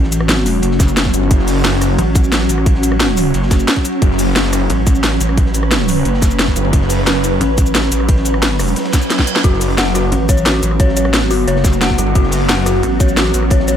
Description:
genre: dark technical drum and bass.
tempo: 177 BPM.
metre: 4/4.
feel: straight.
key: F# minor.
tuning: A4 = 439 Hz.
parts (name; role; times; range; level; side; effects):
swarming drone; sustained chords; 0.0-13.8 s; F#3 to B4; -19 LUFS; equal; built-in reverb, sidechain pumping.
pulsing pluck wobble bass; bass; 0.0-13.8 s; F#1 to A1; -16 LUFS; equal; chorus.
crunchy breakbeat drum kit; drums; 0.0-13.8 s; hi-hat, ride cymbal, snare drum; -30 LUFS; equal; high-pass filter on cymbals, high-pass filter on hats, high-pass filter on snare, high-pass filter on room.
drum and bass drum kit; drums; 0.1-13.7 s; cabasa, hi-hat, rim click, snare drum; -18 LUFS; equal; none.
electronic kick drum; drums; 0.8-13.6 s; none; -13 LUFS; equal; none.
wide detuned saw bass; bass; 1.1-2.0, 4.0-7.4, 9.4-12.8 s; F#1 to G1; -16 LUFS; equal; chorus, tube saturation.
reverse cymbal; sound effects; 8.9-9.4 s; none; -25 LUFS; right 6 dB; none.
dark detuned synth bell; arpeggios; 9.4-13.8 s; F#4 to F#5; -20 LUFS; left 5 dB; chorus, sidechain pumping, ping-pong delay.
room: digital ambience.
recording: none.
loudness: -12 LUFS.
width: side -9 dB against mid.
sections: 0.0-13.8 A section.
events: reverse cymbal 8.9-9.4; drum fill 8.9-9.4.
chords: 0.0 F#m.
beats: 0.29 0.63 0.97 | 1.31 1.65 1.99 2.32 | 2.66 3.00 3.34 3.68 | 4.02 4.36 4.70 5.04 | 5.38 5.71 6.05 6.39 | 6.73 7.07 7.41 7.75 | 8.09 8.43 8.77 9.10 | 9.44 9.78 10.12 10.46 | 10.80 11.14 11.48 11.82 | 12.15 12.49 12.83 13.17 | 13.51.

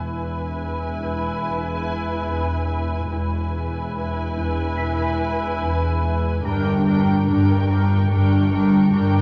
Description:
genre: cinematic, suspense film score.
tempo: 72 BPM.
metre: 4/4.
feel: straight.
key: unclear.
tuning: A4 = 440 Hz.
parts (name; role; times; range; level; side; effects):
muted studio violin section; melody; 0.0-9.2 s; G5 to G#5; -34 LUFS; equal; none.
muted symphonic viola section; accompaniment; 0.0-9.2 s; D4 to B4; -28 LUFS; equal; none.
marimba with medium mallets; riff; 0.0-9.2 s; E2 to G3; -26 LUFS; equal; none.
muted studio cello section; bass; 0.0-9.2 s; E2 to G2; -28 LUFS; equal; none.
muted symphonic double bass section; bass; 0.0-9.2 s; E1 to G1; -29 LUFS; equal; none.
celesta; texture; 0.0-9.2 s; F#5 to B6; -40 LUFS; equal; none.
muted symphonic violin section; texture; 6.5-9.2 s; G5 to C#6; -41 LUFS; equal; none.
room: wet recital hall reverb, RT60 1.7 s.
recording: worn, warbling old tape, cassette tape, warbly pitch drift.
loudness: -21 LUFS.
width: mono.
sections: 0.0-9.2 A section.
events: none.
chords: 0.0 E; 6.5 Gm.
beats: 0.62 1.46 2.29 | 3.12 3.96 4.79 5.62 | 6.46 7.29 8.12 8.96.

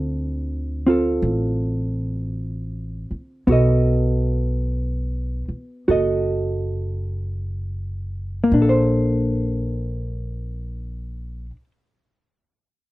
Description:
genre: jazz ballad.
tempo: 43-56 BPM.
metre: 4/4.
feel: swing 68% on 8ths.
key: unclear.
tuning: A4 = 441 Hz.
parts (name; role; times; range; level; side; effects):
hollow-body jazz guitar; accompaniment; 0.0-11.7 s; D3 to D#5; -21 LUFS; equal; none.
upright bass; bass; 0.0-11.5 s; F#1 to D2; -23 LUFS; equal; none.
room: little or no reverb.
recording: dry, close 1970s-style studio recording.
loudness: -20 LUFS.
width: side -18 dB against mid.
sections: 0.0-8.5 A section; 8.5-12.9 B section.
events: slowing down 0.0-8.5.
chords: 0.0 Dm7; 3.5 B7; 8.5 Bbmaj9.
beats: 0.14 1.23 2.34 | 3.48 4.66 5.89 7.17 | 8.51 9.90 11.28.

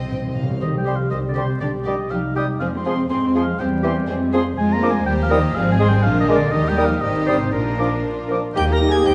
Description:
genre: quick classical-period movement for symphony orchestra.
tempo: 121 BPM.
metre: 2/4.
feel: straight.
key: C minor, Eb major from 4.6 s.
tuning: A4 = 440 Hz.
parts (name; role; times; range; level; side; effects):
warm chamber violin section; melody; 0.0-9.1 s; Bb4 to Bb6; -34 LUFS; equal; none.
warm chamber violin section; second line; 0.0-9.1 s; F4 to G5; -35 LUFS; equal; none.
warm chamber viola section; accompaniment; 0.0-9.1 s; G3 to G4; -30 LUFS; equal; none.
dark chamber cello section; bass; 0.0-9.1 s; Eb2 to C4; -27 LUFS; equal; none.
dark chamber double bass section; bass; 0.0-9.1 s; Ab1 to F2; -26 LUFS; equal; none.
timpani; percussion; 0.0-0.6 s; C3; -30 LUFS; equal; none.
warm oboe; second line; 0.6-9.1 s; G4 to C6; -29 LUFS; equal; none.
mellow French horn section; sustained chords; 0.6-9.1 s; F3 to G4; -28 LUFS; equal; none.
warm clarinet; second line; 0.8-9.1 s; Eb4 to C5; -30 LUFS; equal; none.
silver concert flute; second line; 0.9-9.1 s; G5 to Eb6; -33 LUFS; equal; none.
warm bassoon; accompaniment; 0.9-9.1 s; E3 to C4; -30 LUFS; equal; none.
mellow trumpet; stabs; 8.6-9.1 s; G4 to Bb4; -26 LUFS; equal; none.
room: wet concert hall reverb, RT60 2.3 s.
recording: vinyl crackle, nothing above 10.3 kHz.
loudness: -20 LUFS.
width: mono.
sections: 0.6-8.6 A section.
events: timpani fill 0.0-0.6.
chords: 0.0 Cm; 1.6 G/B; 2.1 Cm; 2.6 Fm; 3.6 C/E; 4.1 Fm; 4.6 Bb7/F; 5.1 Eb; 5.5 Fm/Ab; 6.0 Bb7; 6.5 Eb; 7.0 Abmaj7; 7.5 Bb; 8.6 Eb.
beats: 0.11 | 0.61 1.12 | 1.61 2.11 | 2.60 3.09 | 3.59 4.08 | 4.57 5.06 | 5.54 6.03 | 6.53 7.03 | 7.53 8.05 | 8.56 9.06.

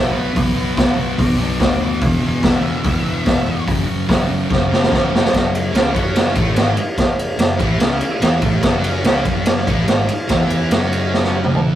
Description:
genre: garage rock duo or trio.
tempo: 145 BPM.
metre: 4/4.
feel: straight.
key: F# minor.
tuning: A4 = 440 Hz.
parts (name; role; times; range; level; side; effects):
octave-fuzz lead guitar; melody; 0.0-3.6 s; G#4 to F#5; -27 LUFS; equal; distortion.
thick fuzz guitar; riff; 0.0-11.8 s; E2 to E4; -21 LUFS; left 1 dB; distortion.
picked electric bass; bass; 0.0-11.8 s; E1 to E2; -23 LUFS; equal; overdrive.
raw garage drum kit; drums; 0.4-11.6 s; hi-hat, kick drum, ride cymbal, snare drum, toms; -16 LUFS; equal; none.
room: light reverb.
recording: rough rehearsal-room recording.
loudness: -14 LUFS.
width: side -12 dB against mid.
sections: 0.0-5.3 A section; 5.3-11.8 B section.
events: drum fill 4.5-5.3, 11.1-11.8.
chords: 0.0 Bm; 2.0 E; 3.7 F#5; 5.3 F#m.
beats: | 0.37 0.78 1.19 1.60 | 2.01 2.43 2.84 3.25 | 3.66 4.08 4.49 4.90 | 5.32 5.73 6.14 6.56 | 6.97 7.39 7.80 8.22 | 8.63 9.05 9.47 9.88 | 10.30 10.72 11.13 11.55.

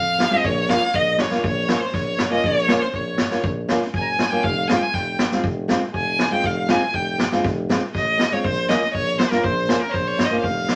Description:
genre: klezmer.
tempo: 120 BPM.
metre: 4/4.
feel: straight.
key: unclear.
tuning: A4 = 442 Hz.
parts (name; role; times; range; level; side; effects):
rich violin; melody; 0.0-10.8 s; Bb4 to Ab5; -25 LUFS; equal; none.
accordion; second line; 0.0-10.8 s; Bb4 to Bb5; -31 LUFS; equal; none.
breathy tuba; bass; 0.0-10.7 s; F1 to F2; -30 LUFS; equal; none.
nylon-string guitar; accompaniment; 0.2-10.8 s; Ab3 to F4; -26 LUFS; equal; none.
street-band drum kit; drums; 0.2-10.8 s; kick drum, snare drum; -26 LUFS; equal; none.
room: wet studio reverb, RT60 0.6 s.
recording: vinyl crackle.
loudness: -21 LUFS.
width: mono.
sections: 0.0-10.8 A section.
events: none.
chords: 0.4 Bbm; 4.4 Fm; 8.4 Bbm.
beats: | 0.45 0.94 1.44 1.94 | 2.44 2.94 3.44 3.94 | 4.43 4.93 5.43 5.93 | 6.43 6.93 7.44 7.94 | 8.44 8.94 9.44 9.94 | 10.44.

